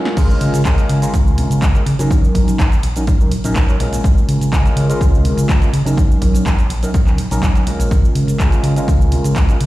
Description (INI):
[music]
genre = filtered disco house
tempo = 124 BPM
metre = 4/4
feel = straight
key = Db major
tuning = A4 = 440 Hz
[part]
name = overdriven tine electric piano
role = accompaniment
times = 0.0-9.6 s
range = Gb3 to Bb4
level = -21 LUFS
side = equal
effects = phaser, sidechain pumping
[part]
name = punchy analog drum machine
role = drums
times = 0.1-9.7 s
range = crash cymbal, handclaps, hi-hat, shaker, snare drum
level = -26 LUFS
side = equal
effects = none
[part]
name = hollow-body short-scale fingered electric bass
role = bass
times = 0.2-9.7 s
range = Bb1 to Db3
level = -18 LUFS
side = equal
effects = sidechain pumping
[part]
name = electronic kick drum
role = drums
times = 0.2-9.5 s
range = none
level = -14 LUFS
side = equal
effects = high-pass filter on kick, high-pass filter on room
[sound]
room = digital ambience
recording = played on a big sound system in a bare room, stone room reverb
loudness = -12 LUFS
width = side -17 dB against mid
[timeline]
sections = 0.2-9.7 A section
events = break 0.0; drum fill 0.0; drop 0.2-9.7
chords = 0.2 Db6; 2.1 Ebm7; 4.0 Db6; 6.0 Ebm7; 7.9 Db6